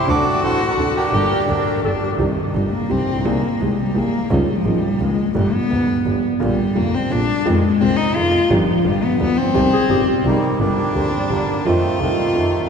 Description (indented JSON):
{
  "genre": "tango",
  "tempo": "171 BPM",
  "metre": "3/4",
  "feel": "rubato",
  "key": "C minor",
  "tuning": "A4 = 441 Hz",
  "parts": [
    { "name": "bandoneon", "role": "melody", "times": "0.0-1.8, 10.3-12.7 s", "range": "C3 to D5", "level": "-23 LUFS", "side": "right 1 dB", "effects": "none" },
    { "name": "warm cello", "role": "second line", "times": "0.0-12.7 s", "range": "Eb3 to G4", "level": "-19 LUFS", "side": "left 2 dB", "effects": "none" },
    { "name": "warm concert grand piano", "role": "accompaniment", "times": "0.1-12.7 s", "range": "F1 to A4", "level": "-22 LUFS", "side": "right 2 dB", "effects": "none" },
    { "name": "warm double bass", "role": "bass", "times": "0.1-12.7 s", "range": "F1 to F2", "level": "-23 LUFS", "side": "equal", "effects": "none" },
    { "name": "dark clarinet", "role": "second line", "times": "1.3-2.2, 9.7-10.6 s", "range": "Eb4 to Bb4", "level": "-27 LUFS", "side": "left 1 dB", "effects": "none" }
  ],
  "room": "wet cathedral reverb, RT60 5.4 s",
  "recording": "recorded in a church or concert hall",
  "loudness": "-16 LUFS",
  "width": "side -6 dB against mid",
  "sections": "0.0-2.2 A section; 2.2-10.6 B section; 10.6-12.7 A section",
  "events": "cello solo 2.2-10.6",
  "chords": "0.1 D7; 1.1 Gmadd9; 2.2 Cmadd9; 3.3 Abadd9/C; 4.3 Dbadd9; 5.4 G; 6.4 Bb6; 7.5 Fm7; 8.5 Cm/G; 8.9 G7; 9.6 Cm; 10.6 Gm; 11.7 F7",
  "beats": "| 0.08 0.43 0.78 | 1.14 1.49 1.84 | 2.19 2.55 2.90 | 3.25 3.60 3.96 | 4.31 4.66 5.00 | 5.36 5.71 6.06 | 6.41 6.76 7.11 | 7.46 7.81 8.16 | 8.51 8.86 9.20 | 9.55 9.90 10.25 | 10.61 10.96 11.31 | 11.66 12.01 12.36"
}